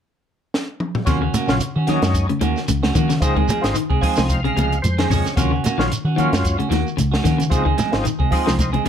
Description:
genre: afrobeat.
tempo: 112 BPM.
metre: 4/4.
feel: swing 55% on 16ths.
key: Eb dorian.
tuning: A4 = 440 Hz.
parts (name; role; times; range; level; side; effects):
compact cocktail drum kit; drums; 0.5-8.9 s; hi-hat, kick drum, snare drum, toms; -22 LUFS; equal; none.
overdriven tonewheel organ; accompaniment; 1.1-8.7 s; F3 to Ab5; -24 LUFS; left 1 dB; slow rotary speaker, chorus vibrato.
electric guitar at the edge of break-up; arpeggios; 1.1-8.9 s; C3 to F3; -25 LUFS; left 7 dB; lush chorus.
semi-hollow electric guitar; stabs; 1.1-8.9 s; F3 to Ab4; -24 LUFS; right 5 dB; none.
hollow-body short-scale fingered electric bass; bass; 1.1-8.9 s; Ab1 to Eb3; -21 LUFS; equal; none.
shekere; percussion; 1.1-8.7 s; none; -28 LUFS; right 3 dB; none.
congas; percussion; 1.3-8.9 s; none; -26 LUFS; right 3 dB; none.
room: light reverb.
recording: none.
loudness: -17 LUFS.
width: side -8 dB against mid.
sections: 0.0-1.1 A section; 1.1-8.9 B section.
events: drum fill 0.5-1.1, 8.6; tonewheel organ fill 3.8-5.4.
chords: 0.0 N.C.; 1.1 Ebm7; 3.2 Dbmaj7; 5.4 Ebm7; 7.5 Dbmaj7.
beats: 0.00 0.54 | 1.07 1.61 2.15 2.69 | 3.22 3.76 4.30 4.83 | 5.37 5.91 6.44 6.98 | 7.52 8.05 8.59.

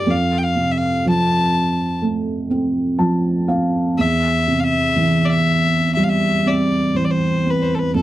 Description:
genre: celtic folk, Celtic slow air.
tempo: 61 BPM.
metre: 4/4.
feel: rubato.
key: unclear.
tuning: A4 = 440 Hz.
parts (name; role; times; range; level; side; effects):
rich fiddle; melody; 0.0-8.0 s; A4 to A5; -20 LUFS; left 3 dB; none.
felt-muted upright piano; accompaniment; 0.0-8.0 s; E2 to A5; -17 LUFS; right 1 dB; none.
room: little or no reverb.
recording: dry, close 1970s-style studio recording.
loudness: -16 LUFS.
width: side -14 dB against mid.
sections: 0.0-8.0 A section.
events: felt piano fill 2.5-4.0.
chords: 0.1 F; 4.0 C/E.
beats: | 0.07 1.05 2.03 3.00 | 3.98 4.96 5.95 6.94 | 7.94.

